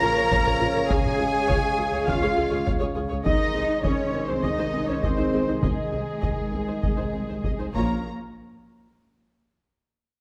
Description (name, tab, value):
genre	cinematic, epic orchestral film score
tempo	101 BPM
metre	4/4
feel	straight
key	unclear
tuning	A4 = 440 Hz
part	warm symphonic violin section	melody	0.0-8.1 s	Ab4 to Bb5	-37 LUFS	equal	none
part	rich symphonic violin section	second line	0.0-8.1 s	Ab4 to Bb5	-39 LUFS	equal	none
part	silver concert flute	second line	0.0-8.1 s	Ab4 to Bb5	-37 LUFS	equal	none
part	warm symphonic viola section	accompaniment	0.0-8.1 s	C4 to F5	-35 LUFS	equal	none
part	dark trombone section	sustained chords	0.0-8.0 s	Db3 to Db4	-35 LUFS	equal	none
part	dark woodwind section	sustained chords	0.0-8.0 s	Ab3 to Eb5	-37 LUFS	equal	none
part	mellow French horn section	sustained chords	0.0-8.0 s	Ab4 to F5	-36 LUFS	equal	none
part	mellow trumpet section	stabs	0.0-8.0 s	Ab4 to Bb5	-34 LUFS	equal	none
part	rich symphonic cello section	bass	0.0-8.1 s	Ab3 to Bb4	-31 LUFS	equal	none
part	rich symphonic double bass section	bass	0.0-8.1 s	Bb1 to Db2	-35 LUFS	equal	none
part	taiko ensemble	drums	0.3-8.9 s	none	-30 LUFS	equal	none
room	moderate scoring stage reverb, RT60 1.7 s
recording	none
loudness	-24 LUFS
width	mono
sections	0.0-8.0 A section; 8.0-10.2 B section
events	none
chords	0.0 Bbm; 0.9 Db; 3.2 Ab/C; 7.7 Bbm; 8.0 N.C.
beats	0.30 | 0.89 1.48 2.07 2.65 | 3.24 3.83 4.43 5.02 | 5.62 6.22 6.83 7.43 | 8.05 8.66